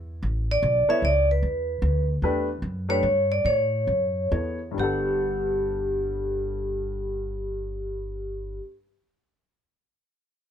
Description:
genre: modal jazz.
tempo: 128-150 BPM.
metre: 3/4.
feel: swing 65% on 8ths.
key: G lydian.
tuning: A4 = 440 Hz.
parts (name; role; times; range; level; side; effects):
upright bass; bass; 0.0-8.6 s; G1 to A2; -28 LUFS; equal; none.
vibraphone with medium hard mallets; melody; 0.5-8.6 s; G4 to E5; -25 LUFS; equal; none.
dark baby grand piano; accompaniment; 0.9-8.7 s; G2 to F#5; -30 LUFS; left 3 dB; none.
room: light reverb.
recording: dark, warm production.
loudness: -23 LUFS.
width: side -9 dB against mid.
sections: 0.0-4.8 A section; 4.8-7.6 B section.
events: slowing down 2.2-4.8.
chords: 0.0 Aadd9; 4.8 Gmaj9.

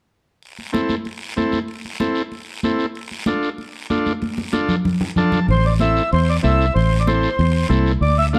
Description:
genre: latin, cumbia.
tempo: 189 BPM.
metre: 4/4.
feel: straight.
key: A minor.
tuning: A4 = 442 Hz.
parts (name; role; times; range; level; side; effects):
guiro; percussion; 0.4-8.4 s; none; -36 LUFS; equal; none.
congas; percussion; 0.6-8.4 s; none; -25 LUFS; equal; none.
combo organ; accompaniment; 0.7-8.4 s; C4 to A5; -25 LUFS; equal; none.
mellow accordion; melody; 5.5-8.4 s; C5 to F5; -23 LUFS; equal; none.
fingered electric bass; bass; 5.5-8.4 s; A1 to E2; -19 LUFS; equal; none.
room: light reverb.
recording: dark, warm production.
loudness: -19 LUFS.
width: mono.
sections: 0.4-5.5 A section; 5.5-8.4 B section.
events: drum fill 4.2-5.5; transistor combo organ fill 5.0-5.5.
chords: 0.4 Am; 3.0 Dm; 5.5 Am.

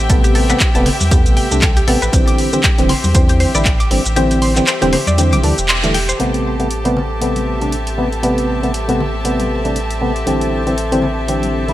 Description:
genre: deep house.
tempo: 118 BPM.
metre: 4/4.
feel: swing 57% on 16ths.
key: A minor.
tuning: A4 = 440 Hz.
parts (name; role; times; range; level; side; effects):
warm sub bass; bass; 0.0-11.7 s; E1 to E2; -19 LUFS; equal; sidechain pumping.
warm chamber string section; texture; 0.0-11.7 s; C4 to E5; -25 LUFS; left 1 dB; sidechain pumping.
warm chamber violin section; texture; 0.0-11.7 s; G4 to A5; -26 LUFS; right 1 dB; none.
mallet-like synth pluck; arpeggios; 0.1-6.2 s; G4 to D6; -23 LUFS; left 2 dB; chorus, sidechain pumping, tape echo.
percussive organ stab; stabs; 0.1-11.7 s; C3 to E4; -18 LUFS; equal; wide subtle chorus, cassette tape, sidechain pumping, tape echo.
electronic kick drum; drums; 0.1-3.8 s; none; -14 LUFS; equal; none.
punchy analog drum machine; drums; 0.1-11.7 s; handclaps, hi-hat, shaker; -20 LUFS; equal; none.
congas; percussion; 0.9-11.5 s; none; -24 LUFS; left 2 dB; none.
room: light reverb, digital ambience.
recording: none.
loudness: -13 LUFS.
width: side -14 dB against mid.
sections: 0.0-6.2 A section; 6.2-11.7 B section.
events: kick drops out 4.2-6.2; band accent 5.7.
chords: 0.0 Am9; 2.1 Cadd9; 6.2 Am9; 10.3 Cadd9/A.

